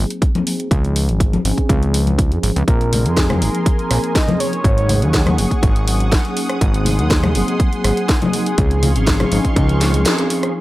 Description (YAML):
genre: nu-disco, nu disco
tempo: 122 BPM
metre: 4/4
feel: straight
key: unclear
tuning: A4 = 439 Hz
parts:
  - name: mellow synth brass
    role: accompaniment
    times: 0.0-10.6 s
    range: F3 to Ab4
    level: -22 LUFS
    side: equal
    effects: chorus, sidechain pumping, tape echo
  - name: fat analog bass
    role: bass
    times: 0.0-10.1 s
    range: Gb1 to F2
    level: -17 LUFS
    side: equal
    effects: tube saturation
  - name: house drum kit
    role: drums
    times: 0.1-10.5 s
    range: hi-hat, rim click, snare drum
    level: -22 LUFS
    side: equal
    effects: none
  - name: electronic kick drum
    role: drums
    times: 0.2-9.7 s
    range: none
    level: -16 LUFS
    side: equal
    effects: none
  - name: congas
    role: percussion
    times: 0.4-10.0 s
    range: none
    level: -22 LUFS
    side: left 3 dB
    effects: none
  - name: soft octave-layered synth lead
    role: melody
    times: 2.7-5.3 s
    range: Ab4 to Eb5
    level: -24 LUFS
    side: equal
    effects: chorus, tape echo
  - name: lush unison pad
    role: sustained chords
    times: 2.7-10.6 s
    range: Ab4 to Eb6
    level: -26 LUFS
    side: equal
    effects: chorus, phaser, sidechain pumping
room: light reverb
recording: dry, gritty hardware recording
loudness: -14 LUFS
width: side -17 dB against mid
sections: 0.0-10.5 A section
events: filter sweep on analog polysynth 0.0-10.5; break 10.1-10.5; band accent 10.1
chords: 0.0 Ab7; 0.7 Dbmaj7; 2.7 Bb9sus4; 4.6 Ab7sus4; 6.6 Ab7; 8.6 Dbmaj7